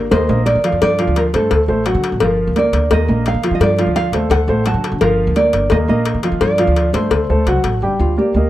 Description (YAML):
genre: latin, Cuban son and guajira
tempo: 171 BPM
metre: 4/4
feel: straight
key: G minor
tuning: A4 = 439 Hz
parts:
  - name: nylon-string guitar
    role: melody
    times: 0.0-8.5 s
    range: F4 to A5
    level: -19 LUFS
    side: right 1 dB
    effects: none
  - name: dark baby grand piano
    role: arpeggios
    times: 0.0-8.5 s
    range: F3 to G5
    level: -18 LUFS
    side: equal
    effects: none
  - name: upright bass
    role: bass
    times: 0.0-8.5 s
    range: G1 to Eb3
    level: -18 LUFS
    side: equal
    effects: none
  - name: cowbell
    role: percussion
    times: 0.1-7.8 s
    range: none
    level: -21 LUFS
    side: left 6 dB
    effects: none
room: small room ambience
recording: dry, close 1970s-style studio recording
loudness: -13 LUFS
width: side -14 dB against mid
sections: 0.0-7.8 A section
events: none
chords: 0.1 Ebsus2; 0.8 G5; 1.5 D7; 2.2 Gm7; 2.9 Ebsus2; 3.6 G5; 4.3 D7; 5.0 Gm7; 5.7 Ebsus2; 6.4 G5; 7.1 D7; 7.8 Gm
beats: 0.12 0.47 | 0.81 1.16 1.51 1.86 | 2.21 2.56 2.91 3.26 | 3.61 3.96 4.31 4.66 | 5.01 5.36 5.71 6.07 | 6.42 6.77 7.12 7.47 | 7.82 8.17